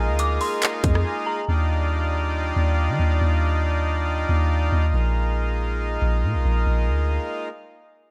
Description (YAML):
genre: hip hop, atmospheric cloud-rap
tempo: 139 BPM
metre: 4/4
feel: half-time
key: Eb major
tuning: A4 = 437 Hz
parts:
  - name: accordion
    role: sustained chords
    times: 0.0-7.5 s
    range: G3 to F4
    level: -29 LUFS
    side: equal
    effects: sidechain pumping
  - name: warbly lo-fi synth keys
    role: arpeggios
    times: 0.0-1.5 s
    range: Ab4 to Ab5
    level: -36 LUFS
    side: equal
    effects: chorus, delay
  - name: soft 808-style bass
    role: bass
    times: 0.0-7.2 s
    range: Bb1 to Eb3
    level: -23 LUFS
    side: equal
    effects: none
  - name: dark detuned synth bell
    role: melody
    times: 0.2-1.5 s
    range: Bb5 to D6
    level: -33 LUFS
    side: equal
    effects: chorus, delay
  - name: trap drum kit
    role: drums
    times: 0.2-1.0 s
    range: handclaps, hi-hat, kick drum, rim click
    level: -26 LUFS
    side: equal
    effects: none
room: light reverb, digital ambience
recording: none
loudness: -22 LUFS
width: mono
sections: 0.0-1.5 A section; 1.5-8.1 B section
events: break 1.1-1.5; stop 7.5-8.1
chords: 0.0 Bb7sus4; 1.5 Ebmaj9; 4.9 Bb7sus4